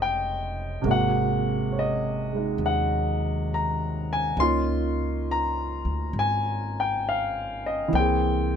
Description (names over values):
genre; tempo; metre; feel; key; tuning
jazz ballad; 68 BPM; 4/4; swing 68% on 8ths; unclear; A4 = 438 Hz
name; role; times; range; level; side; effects
warm baby grand piano; accompaniment; 0.0-8.6 s; C3 to C6; -24 LUFS; equal; none
upright bass; bass; 0.0-8.6 s; F1 to Eb2; -29 LUFS; left 1 dB; none
room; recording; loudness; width
little or no reverb; close, detailed microphones; -23 LUFS; side -7 dB against mid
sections
0.0-8.6 A section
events
none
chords
0.0 Bbm11 (rootless); 0.8 Ab9; 4.4 Db69; 7.9 C7b13